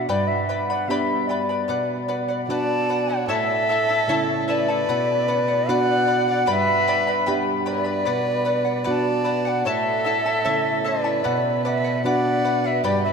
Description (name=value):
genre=andean folk, Andean ensemble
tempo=75 BPM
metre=2/4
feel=straight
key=B minor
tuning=A4 = 440 Hz
part: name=breathy mellow quena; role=melody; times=0.0-13.1 s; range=D5 to A5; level=-22 LUFS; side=equal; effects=none
part: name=charango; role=accompaniment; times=0.0-13.1 s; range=E4 to B5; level=-26 LUFS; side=left 2 dB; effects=none
part: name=nylon-string guitar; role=accompaniment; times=0.0-13.1 s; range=G2 to G4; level=-25 LUFS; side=right 1 dB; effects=none
part: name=rich violin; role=second line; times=2.5-13.1 s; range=G4 to D5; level=-27 LUFS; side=right 2 dB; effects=none
room=wet cathedral reverb, RT60 5.9 s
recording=in a vast, echoing space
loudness=-19 LUFS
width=side -5 dB against mid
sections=0.0-3.3 A section; 3.3-13.1 A section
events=none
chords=0.1 G; 1.7 Bm; 3.3 A; 4.9 Bm; 6.5 G; 8.1 Bm; 9.7 A; 11.2 Bm